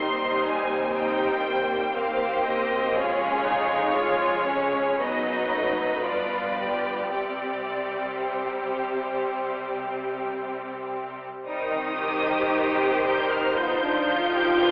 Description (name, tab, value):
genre	classical, slow romantic movement for string orchestra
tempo	55-61 BPM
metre	4/4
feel	rubato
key	C minor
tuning	A4 = 441 Hz
part	rich symphonic violin section	melody	0.0-14.7 s	C5 to G6	-29 LUFS	equal	none
part	warm symphonic violin section	second line	0.0-14.7 s	G3 to Db5	-27 LUFS	equal	none
part	warm symphonic viola section	accompaniment	0.0-14.7 s	Eb3 to F4	-27 LUFS	equal	none
part	rich studio double bass section	bass	0.0-14.7 s	F1 to Eb2	-43 LUFS	equal	none
part	rich symphonic cello section	bass	0.0-14.7 s	Eb2 to G4	-31 LUFS	equal	none
room	wet concert hall reverb, RT60 2.1 s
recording	recorded in a church or concert hall, telephone sound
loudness	-22 LUFS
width	side -39 dB against mid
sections	0.0-11.5 A section; 11.5-14.7 A section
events	none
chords	0.0 Cm/Eb; 3.0 Db/F; 5.0 B7/F#; 6.1 G7; 7.1 C5; 11.5 Cm; 13.6 G7/D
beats	0.96 1.96 | 2.96 3.99 5.02 6.06 | 7.13 8.22 9.31 10.40 | 11.48 12.53 13.57 14.62